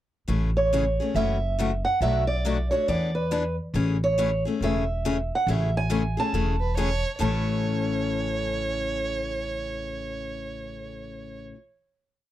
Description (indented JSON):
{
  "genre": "acoustic string swing (jazz manouche)",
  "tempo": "139 BPM",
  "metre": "4/4",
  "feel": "swing 62% on 8ths",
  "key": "A major",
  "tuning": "A4 = 440 Hz",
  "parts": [
    { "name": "picked steel-string acoustic guitar", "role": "accompaniment", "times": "0.3-11.6 s", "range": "A2 to G#4", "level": "-29 LUFS", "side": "left 5 dB", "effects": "none" },
    { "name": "upright bass", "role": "bass", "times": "0.3-11.5 s", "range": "E1 to E2", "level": "-28 LUFS", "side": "equal", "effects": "none" },
    { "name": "picked old ladder-braced acoustic guitar", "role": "melody", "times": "0.6-11.5 s", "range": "B4 to A5", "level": "-27 LUFS", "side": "right 3 dB", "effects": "none" },
    { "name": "warm violin", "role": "second line", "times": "6.6-11.4 s", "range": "B4 to C#5", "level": "-31 LUFS", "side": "right 4 dB", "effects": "slapback echo" }
  ],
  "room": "light reverb",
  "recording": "dry, close 1970s-style studio recording",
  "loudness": "-23 LUFS",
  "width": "side -13 dB against mid",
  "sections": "0.3-7.2 A section; 7.2-10.6 final chord",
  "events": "none",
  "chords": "0.3 Amaj7; 1.1 F#m7; 2.0 Bm7; 2.9 E7; 3.7 Amaj7; 7.2 A"
}